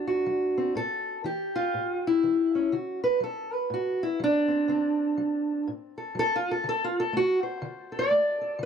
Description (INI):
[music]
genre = acoustic country blues, solo or duo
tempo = 122 BPM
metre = 4/4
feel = swing 61% on 8ths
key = D mixolydian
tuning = A4 = 440 Hz
[part]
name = fingerpicked steel-string acoustic guitar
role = solo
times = 0.0-8.7 s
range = A2 to D5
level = -24 LUFS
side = equal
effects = none
[sound]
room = light reverb, studio ambience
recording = dry, close 1970s-style studio recording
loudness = -24 LUFS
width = side -7 dB against mid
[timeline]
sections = 0.0-2.7 A section; 2.7-8.7 B section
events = steel-string acoustic guitar solo 2.7-8.7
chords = 0.0 D7; 0.8 A7(no3); 2.7 D7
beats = 0.27 | 0.76 1.25 1.74 2.23 | 2.72 3.21 3.70 4.19 | 4.68 5.17 5.66 6.15 | 6.64 7.13 7.62 8.11 | 8.60